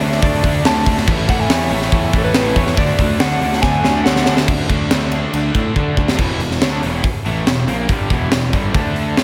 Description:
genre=hard rock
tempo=141 BPM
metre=4/4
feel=straight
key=unclear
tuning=A4 = 440 Hz
part: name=lightly driven lead guitar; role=melody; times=0.0-4.3 s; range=A4 to A5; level=-23 LUFS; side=equal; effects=slapback echo, digital delay
part: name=cranked stack guitar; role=riff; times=0.0-9.2 s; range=E2 to D4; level=-28 LUFS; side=equal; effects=overdrive
part: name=distorted electric guitar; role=riff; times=0.0-9.2 s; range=E2 to D4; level=-27 LUFS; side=equal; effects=distortion, slapback echo
part: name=tight distorted guitar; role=riff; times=0.0-9.2 s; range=E2 to D4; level=-29 LUFS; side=equal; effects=distortion
part: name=fuzz picked electric bass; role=bass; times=0.0-9.2 s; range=E1 to D3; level=-22 LUFS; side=equal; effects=overdrive
part: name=tight metal drum kit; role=drums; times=0.0-9.2 s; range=crash cymbal, hi-hat, kick drum, ride cymbal, snare drum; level=-19 LUFS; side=equal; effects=none
room=moderate lush hall reverb, RT60 1.9 s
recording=big arena sound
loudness=-16 LUFS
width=mono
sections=0.0-4.5 A section; 4.5-6.2 B section; 6.2-9.2 C section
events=drum fill 3.6-4.5, 5.8-6.2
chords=0.0 D5; 1.1 A; 2.8 D5; 6.2 E5; 8.8 D5

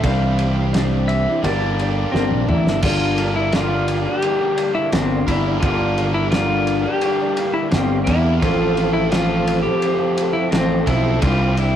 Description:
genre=folk rock and heartland rock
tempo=86 BPM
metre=4/4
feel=straight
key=G dorian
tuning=A4 = 440 Hz
part: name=pedal steel guitar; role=melody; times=0.0-11.8 s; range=C4 to F5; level=-21 LUFS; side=left 1 dB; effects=none
part: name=picked old ladder-braced acoustic guitar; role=accompaniment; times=0.0-11.8 s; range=G2 to A4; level=-25 LUFS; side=left 2 dB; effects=none
part: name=warm upright piano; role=accompaniment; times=0.0-2.6 s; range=D4 to D5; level=-30 LUFS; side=equal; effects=none
part: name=mellow tonewheel organ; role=sustained chords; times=0.0-11.8 s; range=E3 to E5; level=-29 LUFS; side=right 3 dB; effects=none
part: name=biting overdriven guitar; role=riff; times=0.0-11.8 s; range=G2 to Bb4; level=-26 LUFS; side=right 1 dB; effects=none
part: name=picked electric bass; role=bass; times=0.0-11.8 s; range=G1 to E2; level=-20 LUFS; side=equal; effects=none
part: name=cloth-damped thuddy drum kit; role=drums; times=0.0-11.7 s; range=crash cymbal, kick drum, ride cymbal, snare drum, toms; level=-24 LUFS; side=equal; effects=none
room=moderate stone room reverb, RT60 1.5 s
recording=rough rehearsal-room recording, warm saturation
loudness=-16 LUFS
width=side -10 dB against mid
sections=0.0-2.8 A section; 2.8-11.8 A section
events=drum fill 2.1-2.8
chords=0.0 Cadd9; 1.4 Gm; 8.4 F/A; 11.2 Cadd9

